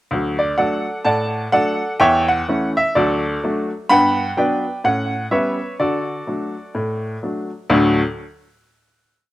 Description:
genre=jazz, stride piano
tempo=126 BPM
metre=4/4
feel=swing 59% on 8ths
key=D major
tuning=A4 = 439 Hz
part: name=bright upright piano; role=solo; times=0.1-8.0 s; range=D2 to B5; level=-17 LUFS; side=equal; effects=slapback echo
room=little or no reverb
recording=recorded outdoors, with no room sound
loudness=-17 LUFS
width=side -16 dB against mid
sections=0.1-7.7 A section; 7.7-9.3 final chord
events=none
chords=0.1 D; 2.0 A/E; 2.9 D; 3.9 Gmaj7; 4.8 A9; 5.8 D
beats=| 0.11 0.58 1.05 1.53 | 2.00 2.47 2.95 3.42 | 3.90 4.37 4.84 5.32 | 5.79 6.27 6.75 7.22 | 7.70

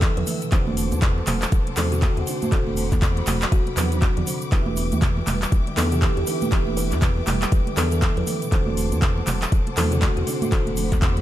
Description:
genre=afro house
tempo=120 BPM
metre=4/4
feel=swing 60% on 16ths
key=unclear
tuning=A4 = 439 Hz
part: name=warm symphonic string section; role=sustained chords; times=0.0-11.2 s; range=B4 to E6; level=-35 LUFS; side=left 4 dB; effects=sidechain pumping
part: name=buzzing marimba with medium mallets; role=arpeggios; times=0.0-10.9 s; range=A2 to B3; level=-31 LUFS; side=right 1 dB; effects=sidechain pumping, ping-pong delay
part: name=felt-muted upright piano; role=stabs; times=0.0-11.2 s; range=B3 to C5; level=-33 LUFS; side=right 6 dB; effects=sidechain pumping, ping-pong delay
part: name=round analog bass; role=bass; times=0.0-11.2 s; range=E1 to E2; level=-25 LUFS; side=equal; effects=sidechain pumping
part: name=afro-pop drum kit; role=drums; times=0.0-11.2 s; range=handclaps, hi-hat, toms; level=-28 LUFS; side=equal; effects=studio reverb
part: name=electronic kick drum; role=drums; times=0.0-11.1 s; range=none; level=-20 LUFS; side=equal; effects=studio reverb
part: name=congas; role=percussion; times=0.0-11.2 s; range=none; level=-30 LUFS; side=right 4 dB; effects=none
part: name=tube shaker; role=percussion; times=0.0-11.1 s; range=none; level=-36 LUFS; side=right 7 dB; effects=none
part: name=buzzing kalimba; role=melody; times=0.2-11.2 s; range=F#4 to B4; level=-30 LUFS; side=left 1 dB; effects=vintage 12-bit sampler grit, ping-pong delay
room=studio ambience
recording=none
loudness=-19 LUFS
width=side -13 dB against mid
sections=0.0-11.2 A section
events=none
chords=0.0 Em7; 0.5 D7/E; 4.5 Em7; 8.5 D7/E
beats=0.02 | 0.52 1.02 1.52 2.02 | 2.52 3.02 3.52 4.02 | 4.52 5.02 5.52 6.02 | 6.52 7.02 7.52 8.02 | 8.52 9.02 9.52 10.02 | 10.52 11.02

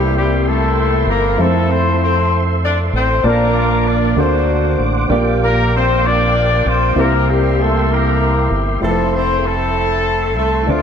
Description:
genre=gospel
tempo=64 BPM (dotted quarters)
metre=6/8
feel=straight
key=F major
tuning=A4 = 440 Hz
part: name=mellow horn section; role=melody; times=0.0-10.8 s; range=F3 to D5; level=-17 LUFS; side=left 3 dB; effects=analog delay
part: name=warm upright piano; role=accompaniment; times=0.0-10.8 s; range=Bb2 to A5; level=-20 LUFS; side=equal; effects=analog chorus
part: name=tonewheel organ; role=sustained chords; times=0.0-10.8 s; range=Bb3 to D6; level=-22 LUFS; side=right 3 dB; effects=slow rotary speaker, chorus vibrato
part: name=fingered electric bass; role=bass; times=0.0-10.8 s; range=F1 to F2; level=-17 LUFS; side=right 1 dB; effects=none
part: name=warm alto saxophone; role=melody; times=8.8-10.8 s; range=E4 to C5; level=-24 LUFS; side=right 3 dB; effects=none
room=wet plate reverb, RT60 3.4 s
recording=dreamy mix soaked in reverb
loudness=-13 LUFS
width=side -7 dB against mid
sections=0.0-8.8 A section; 8.8-10.8 B section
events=none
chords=0.0 C7; 1.4 Fmaj7; 3.2 Bbmaj7; 4.2 D7b13; 5.1 Gm7/Bb; 7.0 C7; 8.8 Fmaj7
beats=0.46 | 1.39 2.32 | 3.25 4.18 | 5.11 6.04 | 6.97 7.90 | 8.83 9.76 | 10.69

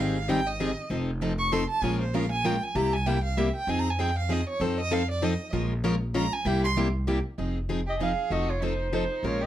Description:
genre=acoustic string swing (jazz manouche)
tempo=194 BPM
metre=3/4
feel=swing 58% on 8ths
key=F minor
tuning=A4 = 441 Hz
part: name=warm violin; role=second line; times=0.0-9.5 s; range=Eb4 to Db6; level=-31 LUFS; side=right 3 dB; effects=none
part: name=picked plugged-in steel-string acoustic guitar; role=accompaniment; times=0.0-9.4 s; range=C3 to Bb4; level=-30 LUFS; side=left 4 dB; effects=none
part: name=picked steel-string acoustic guitar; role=accompaniment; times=0.0-9.4 s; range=C3 to Bb4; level=-34 LUFS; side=right 6 dB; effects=none
part: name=upright bass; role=bass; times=0.0-9.5 s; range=F1 to F2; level=-30 LUFS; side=equal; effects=none
part: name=warm clarinet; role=melody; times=7.9-9.5 s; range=C5 to F5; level=-29 LUFS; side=right 3 dB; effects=none
room=moderate club reverb, RT60 0.6 s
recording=none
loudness=-25 LUFS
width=side -12 dB against mid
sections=0.0-7.4 A section; 7.4-9.5 B section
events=violin solo 0.0-7.4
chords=0.0 Abmaj7; 0.9 F7; 1.8 Bbm7; 2.8 C7; 3.7 Fm7; 4.6 F7; 5.5 Bbm7; 6.5 C7; 7.4 Fm7; 8.3 F7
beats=0.29 0.60 | 0.91 1.22 1.52 | 1.83 2.14 2.45 | 2.76 3.07 3.38 | 3.68 3.99 4.30 | 4.61 4.92 5.22 | 5.53 5.84 6.15 | 6.46 6.77 7.08 | 7.38 7.69 8.00 | 8.31 8.62 8.93 | 9.24

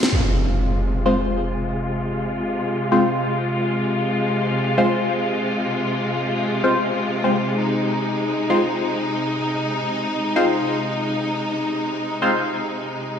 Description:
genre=house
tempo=free time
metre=none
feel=none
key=F minor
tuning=A4 = 440 Hz
part: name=bright studio string section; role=sustained chords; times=0.1-13.2 s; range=C3 to F4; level=-22 LUFS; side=left 1 dB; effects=low-pass filter
part: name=impact and noise sweep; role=sound effects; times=0.1-2.0, 13.2 s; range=none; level=-22 LUFS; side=equal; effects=none
part: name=band-passed chord stab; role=stabs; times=1.1-12.3 s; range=Ab3 to C5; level=-21 LUFS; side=left 1 dB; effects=phaser, ping-pong delay
room=wet lush hall reverb, RT60 2.0 s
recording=played on a big sound system in a bare room, stone room reverb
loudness=-19 LUFS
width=side -8 dB against mid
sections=0.1-13.2 A section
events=impact 0.1-2.0; filter sweep on synth stab 0.1-13.2; filter sweep on string section 0.1-13.2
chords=0.1 Fm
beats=free time

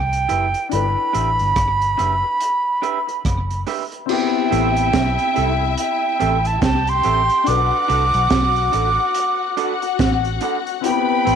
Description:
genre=lovers rock reggae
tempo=71 BPM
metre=4/4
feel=swing 60% on 16ths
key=A dorian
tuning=A4 = 439 Hz
part: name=reedy concert flute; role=melody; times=0.0-11.4 s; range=G5 to D6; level=-19 LUFS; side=right 3 dB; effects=tape echo
part: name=warm grand piano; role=accompaniment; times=0.0-11.4 s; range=B3 to B4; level=-25 LUFS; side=left 14 dB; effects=slapback echo
part: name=vintage muted fingered electric bass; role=bass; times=0.0-11.4 s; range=F#1 to C2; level=-22 LUFS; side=left 1 dB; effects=transformer saturation
part: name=crunchy breakbeat drum kit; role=drums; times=0.1-11.4 s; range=crash cymbal, hi-hat, kick drum, rim click, snare drum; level=-24 LUFS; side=right 3 dB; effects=slapback echo
part: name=electric guitar through a small old amp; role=stabs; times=0.3-11.4 s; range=C4 to E5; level=-27 LUFS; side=right 11 dB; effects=none
part: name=dark studio string section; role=second line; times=4.1-11.4 s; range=E4 to B5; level=-24 LUFS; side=left 14 dB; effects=none
room=light reverb, studio reverb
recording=1960s-style stereo with parts hard left and right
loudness=-16 LUFS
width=side -7 dB against mid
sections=0.0-4.1 A section; 4.1-11.4 B section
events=none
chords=0.0 Cmaj7; 0.7 G6; 4.1 Am7; 7.5 Bm7; 10.8 Am7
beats=| 0.71 1.56 2.40 3.25 | 4.09 4.93 5.78 6.62 | 7.47 8.31 9.15 10.00 | 10.84

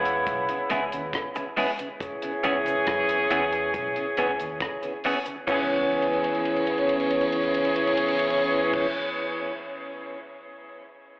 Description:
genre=roots reggae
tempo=69 BPM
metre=4/4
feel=straight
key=C# minor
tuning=A4 = 442 Hz
part: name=warm horn section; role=second line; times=0.0-8.9 s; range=C#3 to G#4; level=-26 LUFS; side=equal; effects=tape echo, slapback echo
part: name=vintage muted fingered electric bass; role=bass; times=0.0-8.9 s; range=B1 to F#2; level=-46 LUFS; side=equal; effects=none
part: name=electric guitar at the edge of break-up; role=accompaniment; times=0.1-9.0 s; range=E3 to G#4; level=-29 LUFS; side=equal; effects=spring reverb, tape echo
part: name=deep reggae drum kit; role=drums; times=0.1-10.4 s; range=crash cymbal, hi-hat, kick drum, ride cymbal, rim click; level=-33 LUFS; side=equal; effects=none
part: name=cabasa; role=percussion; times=0.3-8.9 s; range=none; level=-56 LUFS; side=right 1 dB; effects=none
part: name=mellow tonewheel organ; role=accompaniment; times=0.5-8.9 s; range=C#3 to C#4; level=-30 LUFS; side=equal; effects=slow rotary speaker, tape echo
room=moderate club reverb, RT60 0.7 s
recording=live gig heard through the venue's PA, club reverb, telephone sound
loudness=-23 LUFS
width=side -23 dB against mid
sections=0.0-5.5 A section; 5.5-9.0 B section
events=drum fill 5.9-8.7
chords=0.0 C#m7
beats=0.27 1.14 | 2.00 2.87 3.74 4.61 | 5.48 6.35 7.21 8.08

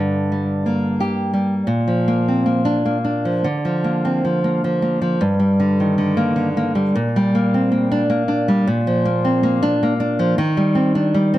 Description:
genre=romantic piece for solo classical guitar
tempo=103 BPM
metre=3/4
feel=rubato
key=Bb major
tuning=A4 = 441 Hz
part: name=nylon-string guitar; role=solo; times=0.0-11.4 s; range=G2 to G4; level=-16 LUFS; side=equal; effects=slapback echo
room=light reverb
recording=close, detailed microphones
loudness=-16 LUFS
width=side -14 dB against mid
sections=0.0-1.7 A section; 1.7-11.4 B section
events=none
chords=0.0 Gm; 1.7 Bb; 3.5 Bb/D; 5.2 Gm; 6.9 Gm/Bb; 8.7 Bb; 10.4 Eb6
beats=0.33 1.00 | 1.66 2.27 2.85 | 3.45 4.04 4.63 | 5.21 5.78 6.36 | 6.95 7.53 8.10 | 8.67 9.24 9.82 | 10.38 10.95

